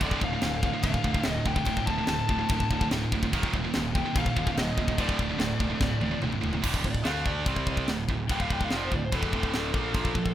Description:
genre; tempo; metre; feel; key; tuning
heavy metal; 145 BPM; 4/4; straight; D phrygian; A4 = 443 Hz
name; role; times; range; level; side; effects
bluesy overdriven lead guitar; melody; 0.0-10.3 s; A4 to A5; -34 LUFS; left 4 dB; distortion
heavy high-gain guitar; riff; 0.0-10.3 s; D2 to D4; -30 LUFS; right 5 dB; distortion
scooped high-gain guitar; riff; 0.0-10.3 s; D2 to D4; -37 LUFS; left 10 dB; distortion
sludgy distorted guitar; riff; 0.0-6.6 s; D2 to Eb3; -35 LUFS; left 2 dB; overdrive
fuzz picked electric bass; bass; 0.0-10.3 s; D1 to D2; -34 LUFS; left 1 dB; overdrive
tight metal drum kit; drums; 0.0-10.3 s; crash cymbal, kick drum, snare drum, toms; -29 LUFS; left 1 dB; none
room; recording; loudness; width
little or no reverb; rough home demo mix; -25 LUFS; side -12 dB against mid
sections
0.0-6.6 A section; 6.6-10.3 B section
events
drum fill 5.8-6.6; lead electric guitar solo 6.6-10.3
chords
0.0 Dm; 3.3 Eb5; 5.0 D5; 7.5 C5; 7.9 Dm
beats
| 0.01 0.42 0.84 1.25 | 1.67 2.08 2.49 2.91 | 3.32 3.74 4.15 4.56 | 4.98 5.39 5.80 6.22 | 6.63 7.04 7.46 7.87 | 8.29 8.70 9.11 9.53 | 9.94

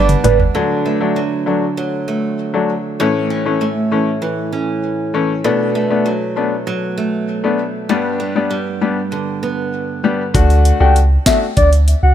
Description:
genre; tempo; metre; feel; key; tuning
dancehall; 98 BPM; 4/4; straight; unclear; A4 = 436 Hz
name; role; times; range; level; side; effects
soft octave-layered synth lead; melody; 0.0-0.4, 10.8-12.1 s; B4 to G5; -18 LUFS; right 1 dB; chorus, phaser, ping-pong delay
picked old ladder-braced acoustic guitar; arpeggios; 0.0-10.9 s; G2 to D4; -20 LUFS; right 3 dB; ping-pong delay
punchy sub bass; bass; 0.0-0.5, 10.3-12.1 s; G1 to D2; -12 LUFS; equal; none
island pop drum kit; drums; 0.1-0.5, 10.3-12.0 s; hi-hat, kick drum, snare drum, toms; -16 LUFS; equal; overdrive
clear grand piano; accompaniment; 0.2-11.4 s; E3 to F#4; -18 LUFS; left 5 dB; none
room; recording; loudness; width
light reverb; none; -14 LUFS; side -10 dB against mid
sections
0.6-10.3 A section; 10.3-12.1 B section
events
drum fill 0.0-0.6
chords
0.0 G; 0.6 D; 3.0 A; 5.4 Bm7; 7.9 G; 10.3 D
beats
| 0.55 1.16 1.77 2.39 | 3.00 3.61 4.22 4.84 | 5.45 6.06 6.67 7.29 | 7.90 8.51 9.12 9.73 | 10.35 10.96 11.57

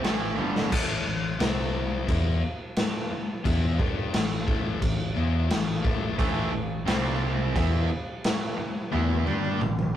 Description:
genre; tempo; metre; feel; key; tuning
hard rock; 88 BPM; 4/4; straight; unclear; A4 = 437 Hz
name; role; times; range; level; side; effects
crunchy overdriven guitar; riff; 0.0-0.7, 6.2-9.9 s; G2 to G4; -30 LUFS; right 5 dB; spring reverb
sludgy distorted guitar; riff; 0.0-9.9 s; G2 to G4; -30 LUFS; left 6 dB; overdrive
hollow-body short-scale fingered electric bass; bass; 0.0-9.9 s; G1 to G2; -30 LUFS; equal; none
raw garage drum kit; drums; 0.0-9.9 s; crash cymbal, kick drum, snare drum, toms; -27 LUFS; equal; none
room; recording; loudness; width
moderate studio reverb, RT60 0.6 s; rough rehearsal-room recording; -24 LUFS; side -11 dB against mid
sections
0.7-10.0 A section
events
drum fill 0.4-0.7, 8.9-10.0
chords
0.0 A5; 1.4 C5; 2.1 A5; 6.9 C5; 7.6 A5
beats
0.04 | 0.72 1.40 2.08 2.76 | 3.45 4.13 4.81 5.50 | 6.18 6.87 7.55 8.24 | 8.92 9.61

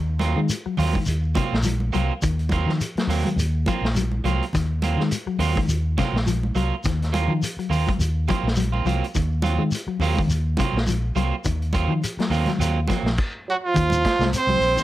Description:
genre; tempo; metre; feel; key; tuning
afrobeat; 104 BPM; 4/4; swing 56% on 16ths; Eb dorian; A4 = 440 Hz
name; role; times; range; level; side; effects
mellow electric guitar; arpeggios; 0.0-14.8 s; C3 to Ab3; -28 LUFS; left 6 dB; harmonic tremolo
fingered electric bass; bass; 0.0-14.8 s; Bb1 to Eb3; -23 LUFS; equal; none
electric guitar at the edge of break-up; stabs; 0.2-13.1 s; Gb3 to F4; -28 LUFS; right 7 dB; plate reverb
vintage drum kit; drums; 0.2-14.8 s; crash cymbal, hi-hat, kick drum, snare drum; -28 LUFS; equal; none
congas; percussion; 0.2-14.6 s; none; -30 LUFS; right 2 dB; none
shekere; percussion; 0.2-14.8 s; none; -30 LUFS; left 2 dB; none
bright trumpet; melody; 13.5-14.8 s; F4 to C5; -20 LUFS; right 2 dB; plate reverb
clear trombone; second line; 13.5-14.8 s; F3 to C4; -26 LUFS; right 4 dB; plate reverb
room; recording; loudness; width
light reverb; none; -20 LUFS; side -15 dB against mid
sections
0.0-13.7 A section; 13.7-14.8 B section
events
stop 13.2-13.7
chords
0.0 Ebm69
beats
0.50 1.08 1.66 | 2.23 2.81 3.39 3.96 | 4.54 5.12 5.69 6.27 | 6.85 7.42 8.00 8.57 | 9.15 9.72 10.30 10.88 | 11.45 12.03 12.60 13.18 | 13.75 14.32

